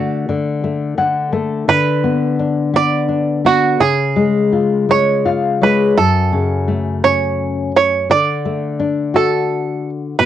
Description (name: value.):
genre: children's music, lullaby.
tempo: 57 BPM (dotted quarters).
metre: 6/8.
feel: rubato.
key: F# harmonic minor.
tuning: A4 = 439 Hz.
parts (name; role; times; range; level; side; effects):
bluegrass banjo; melody; 0.0-10.3 s; F#4 to D5; -16 LUFS; right 6 dB; cassette tape.
nylon-string guitar; accompaniment; 0.0-10.3 s; F#2 to F#5; -16 LUFS; left 4 dB; cassette tape.
room: moderate booth ambience, RT60 0.3 s.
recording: home recording on cassette.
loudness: -13 LUFS.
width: side -11 dB against mid.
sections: 0.0-6.0 A section; 6.0-10.3 B section.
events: nylon-string guitar fill 0.6-1.7, 4.9-6.0.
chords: 0.0 D; 1.7 Bm/D; 3.8 C#; 6.0 F#m; 8.1 D.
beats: 0.64 | 1.68 2.74 | 3.80 4.88 | 5.97 7.04 | 8.10 9.15 | 10.19.